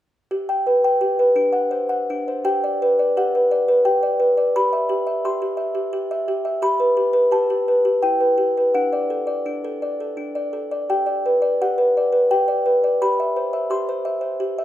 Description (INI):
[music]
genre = classical, lullaby for music box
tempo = 86 BPM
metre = 3/4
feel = rubato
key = G major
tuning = A4 = 439 Hz
[part]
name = music box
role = solo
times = 0.3-14.6 s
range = D4 to C6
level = -18 LUFS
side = equal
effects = none
[sound]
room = light reverb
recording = none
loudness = -18 LUFS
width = side -12 dB against mid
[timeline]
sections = 0.3-2.5 A section; 2.5-14.6 B section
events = none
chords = 0.3 G; 1.4 D7; 2.5 G; 4.6 C/G; 6.6 G; 8.0 Em; 8.7 D; 10.9 G; 13.0 C/G